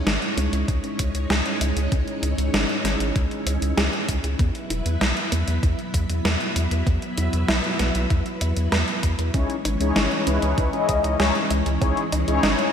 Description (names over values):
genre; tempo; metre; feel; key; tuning
synthwave; 97 BPM; 4/4; straight; C# minor; A4 = 440 Hz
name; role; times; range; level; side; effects
string machine, full ensemble; sustained chords; 0.0-12.7 s; E3 to E5; -28 LUFS; equal; ensemble chorus, sidechain pumping
round analog bass; bass; 0.0-12.5 s; E1 to E2; -24 LUFS; equal; none
analog pluck; arpeggios; 0.1-12.6 s; B3 to B5; -32 LUFS; right 3 dB; chorus, digital delay
gated 80s digital drum machine; drums; 0.1-12.7 s; hi-hat, snare drum; -26 LUFS; equal; gated reverb, gated reverb snare
electronic kick drum; drums; 0.7-11.9 s; none; -24 LUFS; equal; none
mellow synth brass; stabs; 9.3-12.7 s; C#4 to D#5; -23 LUFS; left 4 dB; chorus, phaser, digital delay
room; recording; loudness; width
moderate lush hall reverb, RT60 2.8 s; bright 1980s-style digital production; -20 LUFS; side -8 dB against mid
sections
0.0-12.7 A section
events
filter sweep on synth arpeggio sound 0.0-12.7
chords
0.0 C#madd9; 4.4 Esus2; 9.3 C#madd9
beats
0.06 0.68 1.30 | 1.92 2.54 3.16 3.77 | 4.39 5.01 5.63 6.25 | 6.87 7.49 8.11 8.72 | 9.34 9.96 10.58 11.20 | 11.82 12.44